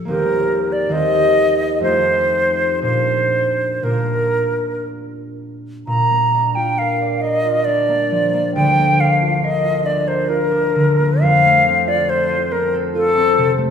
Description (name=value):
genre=classical, romantic duo for flute and harp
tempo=58-74 BPM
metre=3/4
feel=rubato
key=Bb major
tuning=A4 = 441 Hz
part: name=concert harp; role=accompaniment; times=0.0-13.7 s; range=D2 to D5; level=-19 LUFS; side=right 1 dB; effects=none
part: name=bright silver concert flute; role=melody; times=0.1-13.5 s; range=A4 to Bb5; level=-16 LUFS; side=left 1 dB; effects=none
room=wet scoring stage reverb, RT60 1.9 s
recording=heard from further back in the room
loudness=-14 LUFS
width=side -7 dB against mid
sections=0.0-5.9 A section; 5.9-13.7 B section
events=none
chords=0.1 Cm7/Eb; 1.8 F7; 2.8 Bb; 8.6 Bb/D; 11.2 F